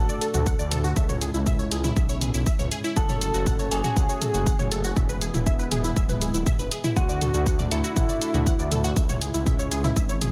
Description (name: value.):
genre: melodic techno.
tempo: 120 BPM.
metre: 4/4.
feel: straight.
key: unclear.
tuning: A4 = 440 Hz.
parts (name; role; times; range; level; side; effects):
unison lead; melody; 0.0-9.1 s; E4 to A4; -34 LUFS; equal; subtle chorus, sidechain pumping, dub echo.
dark detuned synth bell; second line; 0.0-9.1 s; E5 to A5; -40 LUFS; equal; none.
warm analog pad; sustained chords; 0.0-10.3 s; G#3 to F#4; -36 LUFS; equal; chorus, sidechain pumping.
unison pluck; arpeggios; 0.0-10.3 s; E4 to F#5; -34 LUFS; equal; sidechain pumping, delay.
dark detuned saw bass; bass; 0.0-10.3 s; D1 to D2; -30 LUFS; equal; sidechain pumping.
punchy analog drum machine; drums; 0.1-10.3 s; hi-hat, shaker, toms; -32 LUFS; equal; none.
electronic kick drum; drums; 0.5-10.1 s; none; -26 LUFS; equal; none.
room: little or no reverb.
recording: none.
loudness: -24 LUFS.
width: mono.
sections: 0.0-10.3 A section.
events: none.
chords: 0.0 D; 1.0 C#m; 3.0 F#m; 5.0 E; 7.0 D; 9.0 C#m.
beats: 0.47 | 0.96 1.47 1.97 2.46 | 2.96 3.46 3.96 4.46 | 4.96 5.46 5.96 6.46 | 6.96 7.46 7.96 8.46 | 8.96 9.46 9.96.